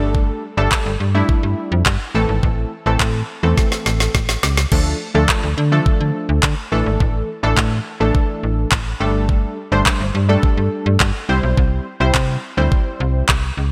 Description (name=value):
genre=dance-pop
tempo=105 BPM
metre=4/4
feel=straight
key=unclear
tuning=A4 = 440 Hz
part: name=funky polysynth comp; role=accompaniment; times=0.0-13.3 s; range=E3 to C5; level=-23 LUFS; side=equal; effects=chorus
part: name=slap-like FM bass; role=bass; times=0.0-13.7 s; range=G1 to D3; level=-20 LUFS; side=equal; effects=sidechain pumping
part: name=smooth R&B drum kit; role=drums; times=0.1-13.4 s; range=crash cymbal, handclaps, kick drum, snare drum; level=-20 LUFS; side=equal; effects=none
room=light reverb, digital ambience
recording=bright 1980s-style digital production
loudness=-18 LUFS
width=mono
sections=0.0-13.7 A section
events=drum fill 3.6-4.7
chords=0.0 Gsus2; 2.1 Am; 4.7 Dm; 6.7 Asus4; 9.0 Gsus2; 11.3 C